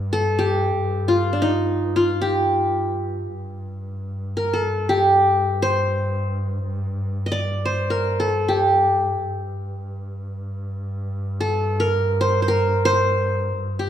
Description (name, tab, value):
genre	Turkish makam ensemble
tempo	free time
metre	none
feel	none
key	G makam ussak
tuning	A4 = 440 Hz
part	clear double bass	drone	0.0-13.9 s	G2	-25 LUFS	equal	none
part	qanun	melody	0.1-13.9 s	D4 to Eb5	-20 LUFS	equal	none
room	wet concert hall reverb, RT60 1.9 s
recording	minimal, uncompressed stereo recording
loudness	-19 LUFS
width	side -10 dB against mid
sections	0.0-13.9 A section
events	none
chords	none